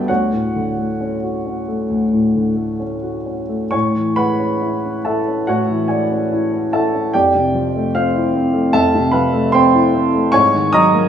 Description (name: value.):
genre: classical, impressionist solo piano.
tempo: 64-76 BPM.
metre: 4/4.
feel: rubato.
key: unclear.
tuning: A4 = 440 Hz.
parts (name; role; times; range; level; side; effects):
warm grand piano; solo; 0.0-11.1 s; D2 to Eb6; -14 LUFS; equal; none.
room: wet recital hall reverb, RT60 1.6 s.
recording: none.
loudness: -14 LUFS.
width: side -8 dB against mid.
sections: 0.0-11.1 A section.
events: none.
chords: 0.1 Dmaj7; 3.7 Amaj9; 7.1 Fmaj7; 10.3 Ab9sus4.